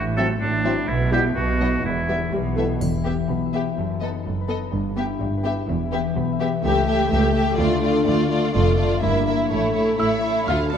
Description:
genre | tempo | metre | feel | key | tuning
cinematic, playful, whimsical film cue | 125 BPM | 2/4 | straight | E minor | A4 = 443 Hz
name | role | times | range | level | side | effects
clear oboe | second line | 0.0-2.3 s | D4 to A4 | -25 LUFS | right 1 dB | none
concert harp | arpeggios | 0.0-10.8 s | F2 to E5 | -26 LUFS | left 8 dB | none
rich studio cello section | bass | 0.0-10.8 s | C#2 to B2 | -27 LUFS | right 3 dB | none
rich studio double bass section | bass | 0.0-10.8 s | E1 to D2 | -27 LUFS | right 2 dB | none
rich studio violin section | melody | 0.2-10.8 s | C#5 to A5 | -32 LUFS | left 2 dB | none
rich studio violin section | second line | 0.2-10.8 s | B3 to A4 | -26 LUFS | left 2 dB | none
dark studio viola section | accompaniment | 0.2-10.8 s | F#3 to D4 | -26 LUFS | right 1 dB | none
mellow French horn section | sustained chords | 0.2-2.7 s | F#3 to E4 | -31 LUFS | left 6 dB | none
triangle | percussion | 2.8-3.7 s | none | -44 LUFS | left 4 dB | none
music box | melody | 10.0-10.8 s | E6 to A6 | -29 LUFS | right 3 dB | none
mellow tuba | bass | 10.5-10.8 s | D2 | -25 LUFS | right 2 dB | none
room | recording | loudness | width
wet scoring stage reverb, RT60 1.9 s | dark, warm production | -19 LUFS | side -8 dB against mid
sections
0.0-2.8 A section; 2.8-10.5 B section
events
none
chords
0.0 F#m7b5/A; 0.9 Em/B; 1.4 B; 1.8 Em; 3.8 B7/F#; 4.7 Em/G; 5.7 Em; 6.6 A7/C#; 7.6 Dm; 8.5 Dm/F; 9.0 Edim/G; 9.5 A

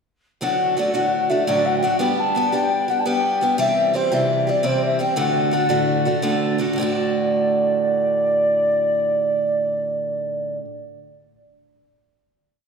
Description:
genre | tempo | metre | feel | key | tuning
celtic folk, Celtic slip jig | 114 BPM (dotted quarters) | 9/8 | straight | D mixolydian | A4 = 440 Hz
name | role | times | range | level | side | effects
reedy baroque flute | melody | 0.4-10.6 s | C5 to A5 | -20 LUFS | left 1 dB | none
picked steel-string acoustic guitar | accompaniment | 0.4-10.7 s | D2 to G4 | -22 LUFS | right 1 dB | none
room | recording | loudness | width
wet scoring stage reverb, RT60 2.1 s | recorded in a church or concert hall | -18 LUFS | side -5 dB against mid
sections
0.4-6.8 A section; 6.8-9.9 final chord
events
none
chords
0.4 D; 2.0 G; 3.6 C; 5.2 D

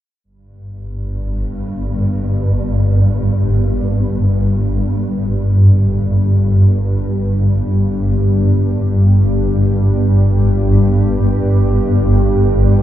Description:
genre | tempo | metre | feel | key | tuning
dark ambient drone | free time | none | none | unclear | A4 = 440 Hz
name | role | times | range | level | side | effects
deep dark ambient pad | sustained chords | 3.1-12.8 s | G3 to G4 | -23 LUFS | equal | chorus, built-in reverb, shimmer reverb
swarming drone | drone | 1.0-12.8 s | G1 to G2 | -12 LUFS | equal | built-in reverb, wide subtle chorus
room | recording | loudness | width
moderate lush hall reverb, RT60 2.8 s | dreamy mix soaked in reverb | -12 LUFS | side -12 dB against mid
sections
0.2-12.8 A section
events
fade-in on ambient pad 0.2-12.8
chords
0.2 G5

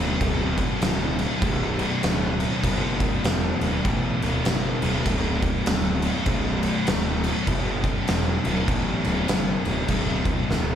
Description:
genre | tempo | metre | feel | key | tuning
stoner and doom metal | 99 BPM | 4/4 | swing 61% on 8ths | B minor | A4 = 444 Hz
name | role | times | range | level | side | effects
fuzz guitar | riff | 0.0-10.8 s | B1 to B2 | -26 LUFS | left 1 dB | distortion
fuzz picked electric bass | bass | 0.0-10.8 s | B0 to A1 | -26 LUFS | equal | overdrive
oversized low-tuned drum kit | drums | 0.2-10.7 s | crash cymbal, kick drum, snare drum | -25 LUFS | equal | none
room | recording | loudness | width
little or no reverb | live gig heard through the venue's PA, club reverb | -21 LUFS | side -9 dB against mid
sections
0.0-10.8 A section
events
drum fill 10.5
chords
0.0 Bm

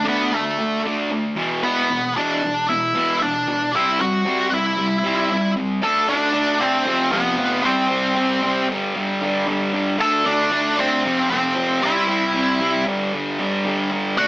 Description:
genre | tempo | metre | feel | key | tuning
rock | 115 BPM | 4/4 | straight | unclear | A4 = 439 Hz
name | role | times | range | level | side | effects
octave-fuzz lead guitar | melody | 0.0-14.3 s | A3 to A5 | -19 LUFS | equal | distortion, slapback echo
fuzz guitar | riff | 0.0-14.3 s | E2 to D4 | -20 LUFS | equal | distortion
room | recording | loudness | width
moderate small room reverb, RT60 0.6 s | small speaker sound | -17 LUFS | side -21 dB against mid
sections
0.0-5.8 A section; 5.8-14.3 B section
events
none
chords
0.0 D5; 1.4 E5; 3.7 C; 5.8 D5; 6.9 F5; 7.7 C5; 8.7 G5; 10.0 D5; 11.0 F5; 11.8 C; 12.9 G5

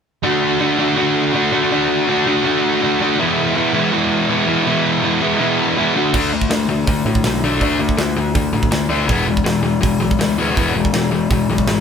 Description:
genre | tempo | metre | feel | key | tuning
punk rock | 162 BPM | 4/4 | straight | unclear | A4 = 439 Hz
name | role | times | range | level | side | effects
overdriven electric guitar | riff | 0.2-11.8 s | D3 to F#4 | -16 LUFS | left 4 dB | none
sludgy distorted guitar | riff | 0.2-6.1 s | D3 to F#4 | -18 LUFS | right 10 dB | overdrive
overdriven picked electric bass | bass | 6.1-11.8 s | E1 to A2 | -22 LUFS | right 2 dB | none
tight metal drum kit | drums | 6.1-11.8 s | crash cymbal, hi-hat, kick drum, snare drum | -20 LUFS | right 2 dB | none
room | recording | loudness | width
moderate studio ambience, RT60 0.4 s | band playing live in one room | -14 LUFS | side -7 dB against mid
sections
0.2-6.1 A section; 6.1-11.8 B section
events
none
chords
0.2 D; 3.2 E; 6.0 D; 6.1 D5; 9.1 E

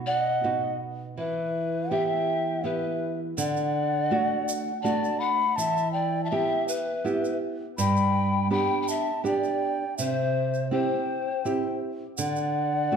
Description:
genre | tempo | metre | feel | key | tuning
andean folk, Andean ensemble | 82 BPM | 3/4 | straight | E minor | A4 = 441 Hz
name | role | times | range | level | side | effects
nylon-string guitar | accompaniment | 0.0-13.0 s | G2 to G4 | -28 LUFS | right 4 dB | none
mellow large quena | melody | 0.1-13.0 s | E5 to B5 | -28 LUFS | left 1 dB | none
breathy mellow pan flute | second line | 0.1-13.0 s | B4 to G5 | -30 LUFS | left 6 dB | none
tube shaker | percussion | 3.4-12.5 s | none | -36 LUFS | right 5 dB | none
room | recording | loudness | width
wet recital hall reverb, RT60 1.5 s | dark, warm production | -24 LUFS | side -7 dB against mid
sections
0.0-3.4 A section; 3.4-13.0 B section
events
none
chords
0.0 B; 1.2 Em; 3.4 D; 5.6 Em; 7.8 G; 10.0 C; 12.2 D

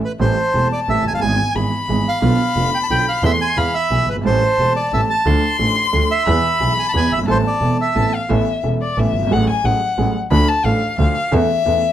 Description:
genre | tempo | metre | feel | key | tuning
tango | 178 BPM | 3/4 | rubato | A minor, A major from 8.3 s | A4 = 440 Hz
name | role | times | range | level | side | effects
bandoneon | melody | 0.0-8.1 s | B4 to A5 | -19 LUFS | right 3 dB | none
warm violin | second line | 0.2-11.9 s | D5 to C6 | -20 LUFS | left 5 dB | none
warm concert grand piano | accompaniment | 0.2-11.8 s | E1 to A4 | -21 LUFS | right 2 dB | none
rich double bass | bass | 0.2-11.8 s | E1 to E2 | -20 LUFS | right 1 dB | none
room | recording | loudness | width
moderate studio reverb, RT60 0.7 s | none | -15 LUFS | side -11 dB against mid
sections
0.2-8.3 A section; 8.3-11.9 B section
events
violin solo 8.3-11.9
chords
0.2 Am7; 1.2 E/G#; 2.2 Bdim; 3.2 Am/E; 3.6 E; 4.2 Am7; 5.3 Dm; 6.3 E; 7.3 Amadd9; 8.3 Aadd9; 9.3 F#madd9/A; 10.3 Dm; 11.3 A/E

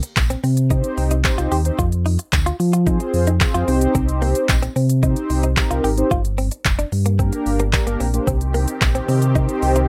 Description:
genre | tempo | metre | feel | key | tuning
dance-pop | 111 BPM | 4/4 | straight | C minor | A4 = 441 Hz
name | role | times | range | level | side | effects
direct-recorded clean electric guitar | riff | 0.0-9.8 s | Bb3 to G4 | -28 LUFS | equal | analog chorus
smooth R&B drum kit | drums | 0.0-9.9 s | handclaps, hi-hat, kick drum, shaker | -23 LUFS | equal | none
sub bass with octave | bass | 0.2-9.9 s | F1 to F3 | -21 LUFS | equal | sidechain pumping
tambourine | percussion | 0.2-8.9 s | none | -38 LUFS | equal | none
mellow synth brass | accompaniment | 0.7-9.8 s | Bb3 to C5 | -24 LUFS | equal | chorus, sidechain pumping, plate reverb
filtered supersaw swell | sustained chords | 8.3-9.9 s | Eb3 to G4 | -26 LUFS | equal | phaser, sidechain pumping, plate reverb
room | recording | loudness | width
light reverb | rough home demo mix | -19 LUFS | mono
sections
0.0-9.9 A section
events
none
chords
0.0 Cm; 1.8 Fm; 3.7 Cm; 6.1 Gm; 8.3 Cm

